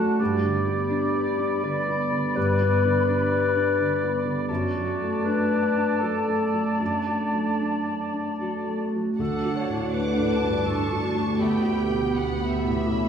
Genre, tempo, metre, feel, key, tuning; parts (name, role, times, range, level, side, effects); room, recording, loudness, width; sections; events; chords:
cinematic, emotional film score for orchestra; 74-86 BPM; 3/4; rubato; D major; A4 = 439 Hz
clear oboe; second line; 0.0-8.8 s; D5 to F#5; -32 LUFS; right 2 dB
concert flute; second line; 0.0-8.9 s; A5 to B5; -32 LUFS; right 1 dB
dark clarinet; second line; 0.0-13.1 s; D4 to D5; -27 LUFS; left 2 dB
felt-muted upright piano; accompaniment; 0.0-13.1 s; D2 to D5; -26 LUFS; equal
concert harp; arpeggios; 0.0-13.1 s; F#2 to F#5; -32 LUFS; left 1 dB
muted symphonic violin section; melody; 9.2-13.1 s; A5 to D6; -36 LUFS; equal
muted symphonic violin section; second line; 9.2-13.1 s; E5 to A5; -34 LUFS; equal
muted chamber viola section; accompaniment; 9.2-13.1 s; B3 to E4; -35 LUFS; equal
muted symphonic cello section; bass; 9.2-13.1 s; A3 to D4; -31 LUFS; right 4 dB
muted symphonic double bass section; bass; 9.2-13.1 s; D2; -33 LUFS; right 3 dB
wet recital hall reverb, RT60 1.4 s; recorded in a church or concert hall; -22 LUFS; side -7 dB against mid
0.0-9.2 A section; 9.2-13.1 B section
0.2 G; 4.5 D/F#; 9.2 D; 11.4 Em/D